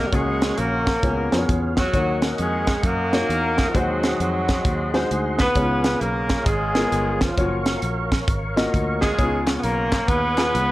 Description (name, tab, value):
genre	uptempo gospel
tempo	132 BPM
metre	4/4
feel	swing 64% on 8ths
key	F# major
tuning	A4 = 438 Hz
part	breathy tenor saxophone	melody	0.0-10.7 s	E#3 to B3	-26 LUFS	right 2 dB	none
part	clear horn section	melody	0.0-10.7 s	A#3 to B4	-26 LUFS	left 1 dB	slapback echo
part	tonewheel organ	sustained chords	0.0-10.7 s	G#4 to C#6	-30 LUFS	right 1 dB	slow rotary speaker, overdrive, chorus vibrato
part	fingered electric bass	bass	0.0-10.7 s	F#1 to F#2	-27 LUFS	equal	none
part	warm grand piano	accompaniment	0.1-10.7 s	C#3 to D#5	-26 LUFS	left 2 dB	none
part	crisp fusion drum kit	drums	0.1-10.7 s	hi-hat, kick drum, snare drum	-23 LUFS	equal	none
part	group handclap	percussion	9.5-10.5 s	none	-33 LUFS	left 4 dB	none
room	light reverb, small room ambience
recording	worn, warbling old tape, cassette tape, warbly pitch drift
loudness	-19 LUFS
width	side -16 dB against mid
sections	0.0-10.7 A section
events	none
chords	0.1 F#/C#; 1.0 C#7; 1.9 D#m7; 3.7 G#7/D#; 5.6 C#7; 7.4 F#maj7; 9.2 C#7